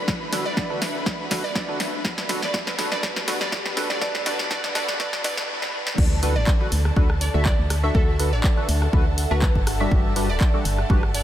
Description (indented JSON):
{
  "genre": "piano house",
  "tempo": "122 BPM",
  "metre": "4/4",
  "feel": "swing 54% on 16ths",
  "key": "D major",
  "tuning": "A4 = 440 Hz",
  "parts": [
    { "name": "warm studio violin section", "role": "sustained chords", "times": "0.0-11.2 s", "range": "A4 to B5", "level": "-35 LUFS", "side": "equal", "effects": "sidechain pumping, low-pass filter" },
    { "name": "granular cloud pad", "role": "texture", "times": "0.0-11.2 s", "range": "D4 to B5", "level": "-35 LUFS", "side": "left 1 dB", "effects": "built-in reverb, lush chorus, sidechain pumping" },
    { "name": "electronic kick drum", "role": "drums", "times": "0.1-11.0 s", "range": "none", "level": "-21 LUFS", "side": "equal", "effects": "none" },
    { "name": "punchy analog drum machine", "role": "drums", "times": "0.1-11.2 s", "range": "crash cymbal, handclaps, hi-hat, rim click, snare drum", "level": "-27 LUFS", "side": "equal", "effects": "none" },
    { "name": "percussive organ stab", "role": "riff", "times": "0.3-11.0 s", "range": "D3 to E5", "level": "-29 LUFS", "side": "equal", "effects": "analog chorus, sidechain pumping, tape echo" },
    { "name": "glassy wavetable pluck", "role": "melody", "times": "0.5-11.2 s", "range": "A4 to D5", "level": "-31 LUFS", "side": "right 2 dB", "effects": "chorus, tape echo" },
    { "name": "organ-like FM bass", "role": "bass", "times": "6.0-11.2 s", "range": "D1 to D2", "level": "-23 LUFS", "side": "equal", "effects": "sidechain pumping" }
  ],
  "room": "moderate huge ambient reverb, RT60 7.3 s",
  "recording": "dreamy mix soaked in reverb, high-pass filter",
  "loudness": "-20 LUFS",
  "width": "side -12 dB against mid",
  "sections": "0.0-6.0 A section; 6.0-11.2 B section",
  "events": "build-up 0.0-6.0; drum fill 0.0-5.5, 5.6-6.0; filter sweep on synth stab 0.0-6.0; filter sweep 0.0-6.0; drop 6.0-11.2",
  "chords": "0.0 D6; 9.7 Gmaj7"
}